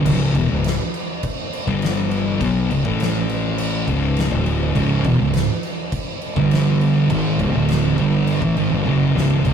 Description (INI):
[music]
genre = stoner and doom metal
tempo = 102 BPM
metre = 4/4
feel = straight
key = unclear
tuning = A4 = 440 Hz
[part]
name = thick fuzz guitar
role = riff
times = 0.0-9.5 s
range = C#2 to B3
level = -20 LUFS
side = left 3 dB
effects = distortion
[part]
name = thick fuzz guitar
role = riff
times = 0.0-0.1, 4.8-9.5 s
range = C#2 to G#3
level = -19 LUFS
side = right 5 dB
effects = distortion
[part]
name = fuzz fingered electric bass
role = bass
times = 0.0-9.5 s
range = C#1 to B1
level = -24 LUFS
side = equal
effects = overdrive
[part]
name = oversized low-tuned drum kit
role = drums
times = 0.1-9.5 s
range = crash cymbal, kick drum, snare drum, toms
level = -24 LUFS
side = equal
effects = none
[sound]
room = wet booth ambience, RT60 0.2 s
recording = rough rehearsal-room recording, tube saturation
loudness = -17 LUFS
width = side -7 dB against mid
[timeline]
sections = 0.1-9.5 A section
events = drum fill 8.9-9.5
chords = 0.1 C#m; 1.7 G5; 2.4 C#5; 2.9 A5; 3.9 C#m; 6.4 G5; 7.1 C#5